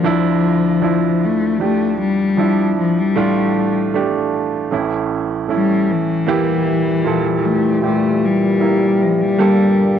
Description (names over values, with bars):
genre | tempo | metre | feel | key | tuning
pop ballad | 77 BPM | 4/4 | straight | D minor | A4 = 439 Hz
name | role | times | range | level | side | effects
warm cello | melody | 0.0-10.0 s | E3 to A3 | -17 LUFS | left 6 dB | cassette tape
clear baby grand piano | accompaniment | 0.0-10.0 s | G1 to Bb4 | -18 LUFS | right 7 dB | cassette tape
mellow French horn section | sustained chords | 6.3-10.0 s | Bb2 to G4 | -19 LUFS | equal | cassette tape
room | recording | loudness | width
moderate spring reverb, RT60 1.7 s, small room ambience | home recording on cassette | -14 LUFS | side -9 dB against mid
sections
0.0-10.0 A section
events
none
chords
0.0 Dmadd9; 3.2 Dm/A; 4.7 A; 6.3 Edim; 9.4 Gmadd9